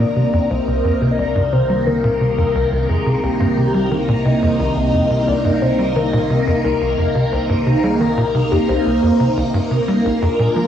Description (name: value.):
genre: ambient, sequencer-driven space music.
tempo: 88 BPM.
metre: 4/4.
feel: straight.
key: C minor.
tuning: A4 = 440 Hz.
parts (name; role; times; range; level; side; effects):
soft octave-layered synth lead; melody; 0.0-10.7 s; G4 to Eb5; -21 LUFS; left 4 dB; chorus, phaser, cassette tape, plate reverb, ping-pong delay.
phased string machine; sustained chords; 0.0-10.7 s; C3 to Bb4; -18 LUFS; right 1 dB; ensemble chorus, phaser.
tight sequencer bass; riff; 0.0-10.7 s; Bb1 to G3; -19 LUFS; equal; lush chorus, cassette tape, ping-pong delay.
analog drone; bass; 0.5-10.7 s; Bb1 to C2; -26 LUFS; equal; chorus.
room: wet small room reverb, RT60 0.6 s.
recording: home recording on cassette.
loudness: -14 LUFS.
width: side -9 dB against mid.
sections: 0.0-10.7 A section.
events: none.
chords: 0.0 Cm7; 10.0 Bb7.